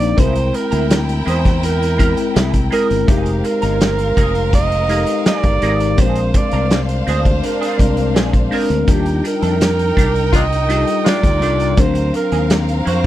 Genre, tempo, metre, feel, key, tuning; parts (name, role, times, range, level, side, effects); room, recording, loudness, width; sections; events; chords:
lush 1970s-style soul; 83 BPM; 4/4; straight; A4 = 440 Hz
warm alto saxophone; melody; 0.0-13.1 s; G4 to Eb5; -20 LUFS; right 5 dB
warm studio violin section; second line; 0.0-13.1 s; Bb3 to G5; -25 LUFS; left 2 dB
bell-like tine electric piano; accompaniment; 0.0-13.1 s; F#3 to A5; -21 LUFS; left 6 dB; auto-pan
electric guitar at the edge of break-up; riff; 0.0-13.1 s; A3 to Bb4; -26 LUFS; right 4 dB; wah, ensemble chorus
fingered electric bass; bass; 0.0-13.1 s; F1 to F2; -19 LUFS; equal
vintage drum kit; drums; 0.0-13.1 s; hi-hat, kick drum, snare drum; -17 LUFS; equal
warm horn section; stabs; 10.3-11.7 s; Bb3 to F4; -23 LUFS; left 4 dB
little or no reverb; -13 LUFS; side -13 dB against mid
0.0-13.1 A section
0.2 C7b13; 3.1 Fm11; 6.0 Bb9; 8.9 Ebmaj9#11; 11.8 D7alt